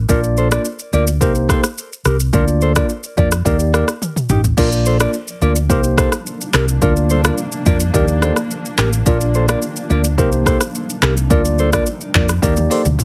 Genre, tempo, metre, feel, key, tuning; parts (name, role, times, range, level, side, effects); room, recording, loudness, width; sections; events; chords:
afrobeats; 107 BPM; 4/4; straight; Bb major; A4 = 439 Hz
hollow-body short-scale fingered electric bass; bass; 0.0-13.0 s; A1 to F2; -19 LUFS; equal
bell-like tine electric piano; accompaniment; 0.1-12.9 s; Bb3 to D5; -21 LUFS; equal
mellow electric guitar; riff; 0.1-12.8 s; Eb4 to D5; -24 LUFS; equal; digital delay
deep house drum kit; drums; 0.1-13.0 s; crash cymbal, handclaps, hi-hat, kick drum, rim click, shaker, toms; -20 LUFS; equal
granular cloud pad; sustained chords; 5.3-13.0 s; Bb3 to D4; -29 LUFS; equal; built-in reverb
light reverb; heavily compressed radio sound; -16 LUFS; mono
0.0-4.6 A section; 4.6-13.0 B section
drum fill 4.0-4.6, 12.4-13.0
0.1 Bb; 1.2 Cm7; 2.3 Bb/D; 3.5 Ebmaj7; 4.6 Bb; 5.7 Cm7; 6.8 Bb/D; 7.9 Ebmaj7; 9.1 Bb; 10.2 Cm7; 11.3 Bb/D; 12.4 Ebmaj7